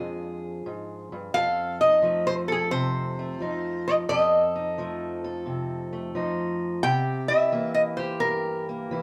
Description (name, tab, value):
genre	acoustic country blues, solo or duo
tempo	87 BPM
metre	4/4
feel	swing 67% on 8ths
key	F mixolydian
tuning	A4 = 440 Hz
part	fingerpicked steel-string acoustic guitar	accompaniment	0.0-9.0 s	F2 to A4	-32 LUFS	equal	none
part	lap resonator guitar	melody	1.3-8.6 s	Ab4 to G5	-25 LUFS	equal	none
room	wet studio reverb, RT60 0.6 s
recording	band playing live in one room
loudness	-26 LUFS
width	mono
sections	0.0-9.0 A section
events	none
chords	0.0 Bb7 (rootless); 1.3 F7; 6.8 C7